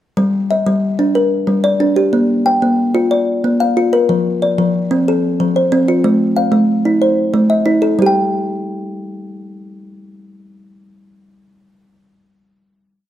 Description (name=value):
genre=southern african traditional, mbira-style interlocking cycle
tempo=123 BPM (dotted quarters)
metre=12/8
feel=straight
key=G equiheptatonic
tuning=A4 = 440 Hz
part: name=kalimba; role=solo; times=0.2-11.9 s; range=F3+29c to G5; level=-13 LUFS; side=equal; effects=none
room=light reverb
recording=close, detailed microphones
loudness=-12 LUFS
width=side -12 dB against mid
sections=0.2-8.0 A section; 8.0-11.8 final note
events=none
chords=0.2 Gm; 2.1 Bb; 4.1 F; 6.0 Am; 8.0 N.C.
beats=| 0.18 0.67 1.16 1.65 | 2.14 2.63 3.12 3.60 | 4.09 4.58 5.07 5.56 | 6.04 6.53 7.01 7.50 | 7.98 8.46 8.95 9.43 | 9.91 10.39 10.87 11.35